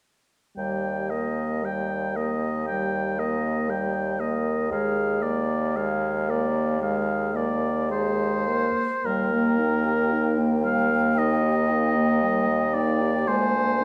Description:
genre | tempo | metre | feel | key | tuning
classical, slow romantic movement for wind quintet | 57 BPM | 4/4 | uneven beats, rubato | Eb major | A4 = 440 Hz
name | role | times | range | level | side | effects
warm oboe | second line | 0.6-13.8 s | Bb4 to G5 | -29 LUFS | equal | none
clear French horn | accompaniment | 0.6-13.8 s | G3 to Bb3 | -30 LUFS | equal | none
dark clarinet | accompaniment | 0.6-13.8 s | G3 to Bb4 | -34 LUFS | equal | none
warm bassoon | bass | 0.6-13.8 s | D2 to Eb2 | -30 LUFS | equal | none
mellow hollow concert flute | melody | 9.1-13.8 s | G5 to Ab5 | -34 LUFS | equal | none
room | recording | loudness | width
wet recital hall reverb, RT60 1.4 s | dark, warm production | -24 LUFS | mono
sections
0.6-9.0 A section; 9.0-13.8 B section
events
none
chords
0.6 Eb; 4.7 Bb7/Eb; 9.0 Eb; 13.3 Bb7/D

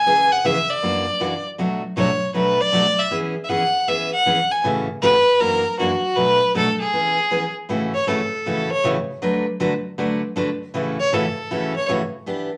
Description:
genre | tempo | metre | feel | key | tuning
country | 157 BPM | 4/4 | swing 66% on 8ths | A major | A4 = 439 Hz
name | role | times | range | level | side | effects
clear fiddle | melody | 0.0-11.9 s | F#4 to G#5 | -21 LUFS | equal | none
picked steel-string acoustic guitar | accompaniment | 0.1-12.5 s | F#2 to B4 | -25 LUFS | equal | none
room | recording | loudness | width
wet club reverb, RT60 0.7 s | none | -20 LUFS | mono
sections
0.0-7.7 A section; 7.7-12.6 B section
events
fiddle solo 7.7-12.6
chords
0.1 C#m7; 0.8 F#aug7; 1.6 Bm7; 3.1 E6; 4.6 A6; 5.4 F#aug7; 6.2 Bm7; 6.9 E6; 7.7 A6; 9.2 D6; 10.7 A6

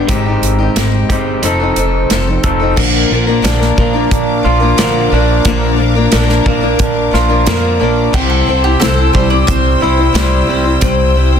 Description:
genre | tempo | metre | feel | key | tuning
folk rock and heartland rock | 89 BPM | 4/4 | straight | unclear | A4 = 440 Hz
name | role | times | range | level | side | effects
picked old ladder-braced acoustic guitar | accompaniment | 0.0-11.4 s | Bb2 to C5 | -16 LUFS | left 7 dB | none
electric guitar through a small old amp | riff | 0.0-11.4 s | Bb2 to A4 | -16 LUFS | right 3 dB | none
upright bass | bass | 0.0-11.4 s | F1 to F2 | -15 LUFS | equal | none
natural country drum kit | drums | 0.1-11.0 s | crash cymbal, hi-hat, kick drum, snare drum | -17 LUFS | right 1 dB | soft clipping on kick
clear symphonic string section | sustained chords | 2.8-11.4 s | Bb4 to E6 | -24 LUFS | left 1 dB | none
mandolin | second line | 8.1-10.8 s | G4 to D5 | -18 LUFS | equal | none
room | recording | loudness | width
light reverb, small room ambience | dense, heavily limited modern master | -10 LUFS | side -8 dB against mid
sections
0.0-2.8 A section; 2.8-11.4 B section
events
none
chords
0.1 Abmaj7; 1.4 F7; 2.8 Bb; 8.1 C

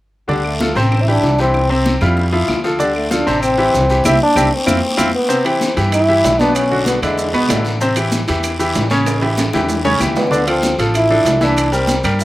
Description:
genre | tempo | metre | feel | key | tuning
latin, salsa | 192 BPM | 4/4 | straight | C major | A4 = 441 Hz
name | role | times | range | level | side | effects
warm trombone | melody | 0.3-7.6, 10.2-12.2 s | G3 to E4 | -16 LUFS | equal | none
bright grand piano | accompaniment | 0.3-12.2 s | B2 to E5 | -18 LUFS | equal | none
upright bass | bass | 0.3-12.2 s | A1 to G2 | -20 LUFS | equal | none
bongos | percussion | 0.3-12.2 s | none | -28 LUFS | left 4 dB | none
congas | percussion | 0.3-12.2 s | none | -25 LUFS | equal | none
guiro | percussion | 0.3-12.2 s | none | -27 LUFS | left 2 dB | none
claves | percussion | 0.4-12.2 s | none | -30 LUFS | left 1 dB | none
maracas | percussion | 2.8-12.2 s | none | -29 LUFS | right 4 dB | none
timbales | percussion | 5.5-12.2 s | none | -25 LUFS | right 4 dB | none
room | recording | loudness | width
little or no reverb | recorded outdoors, with no room sound, faint mains hum | -13 LUFS | side -16 dB against mid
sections
0.3-5.3 A section; 5.3-12.2 B section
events
band accent 4.1-5.3; drum fill 4.7-5.3, 9.1-10.3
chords
0.3 Dm7; 0.9 Am7; 1.5 C; 2.2 Fmaj7; 2.8 Dm7; 3.4 Am7; 4.1 C; 4.7 F5; 5.3 Cmaj7; 6.6 Bm; 7.2 E7; 7.8 Am7; 9.1 A7; 10.3 Dm7; 11.6 C7

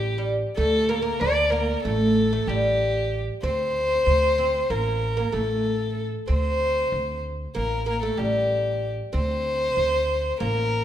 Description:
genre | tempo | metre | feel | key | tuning
Turkish makam ensemble | 189 BPM (eighths) | 9/8 | straight | unclear | A4 = 440 Hz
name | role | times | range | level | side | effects
rich violin | melody | 0.0-10.8 s | G4 to D5 | -24 LUFS | left 1 dB | none
oud | second line | 0.0-10.8 s | G3 to D4 | -27 LUFS | right 1 dB | none
upright bass | bass | 0.0-10.8 s | A1 to D2 | -28 LUFS | equal | none
room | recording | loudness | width
moderate recital hall reverb, RT60 1.7 s | minimal, uncompressed stereo recording | -21 LUFS | side -11 dB against mid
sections
0.0-10.8 A section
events
none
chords
none

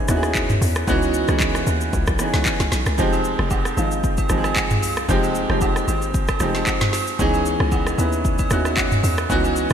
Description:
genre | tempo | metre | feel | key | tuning
amapiano | 114 BPM | 4/4 | swing 55% on 16ths | unclear | A4 = 440 Hz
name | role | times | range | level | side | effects
warm baby grand piano | accompaniment | 0.0-9.7 s | Fb3 to Cb5 | -22 LUFS | right 1 dB | none
hollow log drum bass | bass | 0.0-9.7 s | F1 to Fb2 | -24 LUFS | equal | none
afro-pop drum kit | drums | 0.1-9.7 s | handclaps, hi-hat, kick drum, rim click, shaker, snare drum, toms | -22 LUFS | equal | gated reverb
agogo bells and woodblock | percussion | 3.1-9.6 s | none | -30 LUFS | right 6 dB | none
room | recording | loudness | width
moderate lush hall reverb, RT60 2.7 s | bright 1980s-style digital production | -18 LUFS | side -8 dB against mid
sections
0.0-9.7 A section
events
none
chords
0.0 Dbm9; 3.0 Fm9; 7.2 Dbm9

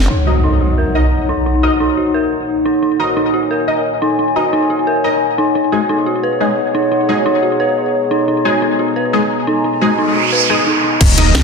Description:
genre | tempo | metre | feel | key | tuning
dark technical drum and bass | 176 BPM | 4/4 | straight | Eb minor | A4 = 440 Hz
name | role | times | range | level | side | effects
dark analog pad | sustained chords | 0.0-11.4 s | Bb3 to Bb5 | -26 LUFS | left 2 dB | wide subtle chorus, sidechain pumping
warbly tape-like pad | texture | 0.0-11.0 s | Eb4 to Bb5 | -18 LUFS | left 1 dB | chorus, built-in reverb, sidechain pumping
dark detuned synth bell | arpeggios | 0.1-10.9 s | Eb4 to Cb5 | -18 LUFS | right 1 dB | chorus, sidechain pumping, low-pass filter, ping-pong delay
impact and noise sweep | sound effects | 0.1-1.5, 9.9-11.4 s | none | -16 LUFS | right 1 dB | none
orchestra-hit-like synth stab | stabs | 0.3-11.3 s | Ab3 to Eb5 | -19 LUFS | left 1 dB | built-in reverb, phaser, cassette tape, ping-pong delay
snarling distorted saw bass | bass | 11.0-11.4 s | Eb1 to Db2 | -14 LUFS | equal | distortion, tube saturation, sidechain pumping
drum and bass drum kit | drums | 11.0-11.4 s | crash cymbal, hi-hat, snare drum | -18 LUFS | left 2 dB | overdrive, low-pass filter on hats, low-pass filter on cymbals, low-pass filter on snare
electronic kick drum | drums | 11.0-11.1 s | none | -10 LUFS | equal | overdrive
room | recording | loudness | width
moderate lush hall reverb, RT60 1.8 s, digital ambience | dense, heavily limited modern master | -12 LUFS | side -5 dB against mid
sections
0.1-11.0 A section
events
impact 0.1-1.5, 11.0-11.4; noise sweep 9.9-11.0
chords
0.1 Ebm; 5.6 Abmadd9

